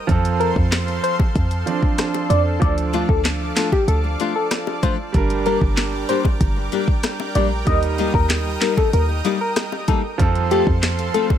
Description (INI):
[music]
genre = dancehall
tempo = 95 BPM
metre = 4/4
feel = straight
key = unclear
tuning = A4 = 438 Hz
[part]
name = clear baby grand piano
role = accompaniment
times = 0.0-11.4 s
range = F3 to Bb4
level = -26 LUFS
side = right 6 dB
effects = sidechain pumping
[part]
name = lush unison pad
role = sustained chords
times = 0.0-11.4 s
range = A4 to Eb6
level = -29 LUFS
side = right 1 dB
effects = chorus, sidechain pumping
[part]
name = short 808-style bass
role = bass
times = 0.1-11.1 s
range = G1 to F2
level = -21 LUFS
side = equal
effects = none
[part]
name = afro-pop drum kit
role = drums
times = 0.1-11.4 s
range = handclaps, hi-hat, kick drum, rim click, snare drum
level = -20 LUFS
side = equal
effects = none
[part]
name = soft struck synth lead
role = melody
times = 0.4-11.3 s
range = G4 to Eb5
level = -23 LUFS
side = left 2 dB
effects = chorus, phaser
[part]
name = bongos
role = percussion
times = 0.7-11.4 s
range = none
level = -29 LUFS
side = left 9 dB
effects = none
[part]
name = nylon-string guitar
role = arpeggios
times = 2.9-11.3 s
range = F3 to A4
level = -25 LUFS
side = left 7 dB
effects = tape echo
[sound]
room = little or no reverb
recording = none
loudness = -17 LUFS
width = side -10 dB against mid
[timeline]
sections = 0.0-11.4 A section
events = none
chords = 0.1 F; 2.6 Dm; 5.1 Gm; 7.7 Eb; 10.2 F